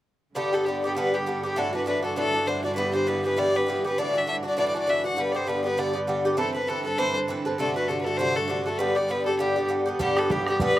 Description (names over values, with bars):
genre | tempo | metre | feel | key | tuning
celtic folk, Celtic reel | 199 BPM | 4/4 | swing 57% on 8ths | G major | A4 = 438 Hz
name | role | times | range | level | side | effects
clear studio string section | drone | 0.3-10.8 s | G2 to D3 | -35 LUFS | right 2 dB | none
warm fiddle | melody | 0.4-10.8 s | G4 to F#5 | -26 LUFS | left 1 dB | slapback echo
Irish bouzouki | accompaniment | 0.4-10.8 s | G2 to B4 | -25 LUFS | equal | none
bodhran | percussion | 10.0-10.8 s | none | -28 LUFS | right 2 dB | none
room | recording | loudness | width
little or no reverb | recorded outdoors, with no room sound | -23 LUFS | side -14 dB against mid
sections
0.4-10.0 A section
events
none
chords
0.4 G; 1.6 Dadd9; 2.8 Em; 4.0 Dadd9; 5.2 G; 6.4 Amadd9; 7.6 D7; 8.8 G